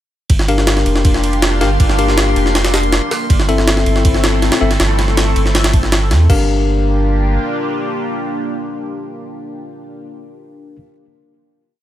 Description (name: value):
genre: drum and bass, jungle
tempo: 160 BPM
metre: 4/4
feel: straight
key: G dorian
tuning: A4 = 440 Hz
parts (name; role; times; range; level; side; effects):
- lush unison pad; sustained chords; 0.6-10.1 s; A3 to A4; -22 LUFS; equal; chorus, phaser
- soft dub sub bass; bass; 0.3-7.4 s; F1 to E2; -15 LUFS; equal; none
- jungle sampler-style drum kit; drums; 0.3-6.4 s; crash cymbal, kick drum, ride cymbal, snare drum; -15 LUFS; equal; none
- drifting glass-harmonics texture; texture; 0.8-4.8 s; C6; -28 LUFS; right 2 dB; chorus, built-in reverb
- bell-like tine electric piano; stabs; 0.5-10.8 s; C4 to F5; -20 LUFS; left 5 dB; dub echo
room: little or no reverb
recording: none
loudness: -12 LUFS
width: side -12 dB against mid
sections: 0.3-6.3 drop; 6.3-9.3 final chord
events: drop 0.3-6.3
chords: 0.3 Gm7; 3.3 Am/G; 6.3 Gm7